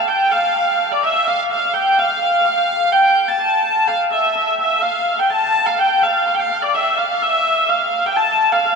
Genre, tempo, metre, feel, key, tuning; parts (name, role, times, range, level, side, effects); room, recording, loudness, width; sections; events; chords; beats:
medieval; 126 BPM; 3/4; straight; A4 = 438 Hz
rich hurdy-gurdy; solo; 0.0-8.8 s; D5 to A5; -14 LUFS; equal
wet cathedral reverb, RT60 5.2 s; minimal, uncompressed stereo recording; -14 LUFS; side -4 dB against mid
0.0-8.8 A section
| 0.08 0.56 1.04 | 1.51 1.99 2.47 | 2.94 3.42 3.90 | 4.37 4.85 5.32 | 5.80 6.28 6.75 | 7.23 7.70 8.18 | 8.65